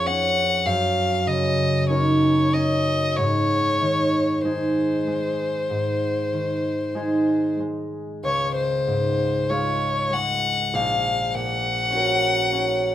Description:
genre	classical, romantic duo for violin and harp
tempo	46-52 BPM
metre	4/4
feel	rubato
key	Db major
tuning	A4 = 441 Hz
part	rich violin	melody	0.0-12.9 s	C5 to Gb5	-23 LUFS	left 2 dB	none
part	concert harp	accompaniment	0.0-12.9 s	Bb1 to Bb4	-22 LUFS	right 1 dB	none
room	light reverb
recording	minimal, uncompressed stereo recording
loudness	-20 LUFS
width	side -12 dB against mid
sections	0.0-12.9 A section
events	none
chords	0.0 Db/F; 0.7 Ebm7/Gb; 3.2 Ab; 8.2 Db; 10.7 Gb/Bb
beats	0.66 1.89 | 3.16 4.42 5.67 6.95 | 8.23 9.50 10.73 11.93

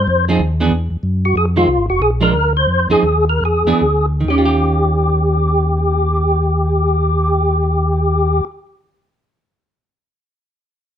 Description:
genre	soul jazz organ trio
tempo	132-190 BPM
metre	4/4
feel	swing 61% on 8ths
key	Eb mixolydian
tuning	A4 = 444 Hz
part	percussive tonewheel organ	melody	0.0-8.4 s	F4 to C5	-16 LUFS	left 1 dB	slow rotary speaker, overdrive, chorus vibrato
part	mellow tonewheel organ	bass	0.0-8.4 s	F1 to F#2	-17 LUFS	equal	overdrive, chorus vibrato, slow rotary speaker
part	vintage hollow-body jazz guitar	accompaniment	0.3-8.7 s	Eb3 to Ab4	-19 LUFS	right 4 dB	none
room	light reverb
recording	dark, warm production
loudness	-13 LUFS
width	side -9 dB against mid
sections	0.0-4.3 A section; 4.3-7.9 B section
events	slowing down 1.4-4.3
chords	0.1 Fm7; 0.7 Esus2; 1.4 Fm7; 2.0 Bb7; 2.7 Fm7; 3.4 E7; 4.3 Eb9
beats	| 0.09 0.40 0.72 1.04 | 1.35 1.67 2.00 2.33 | 2.68 3.04 3.42 3.82 | 4.26 4.71 5.17 5.62 | 6.08 6.53 6.99 7.44

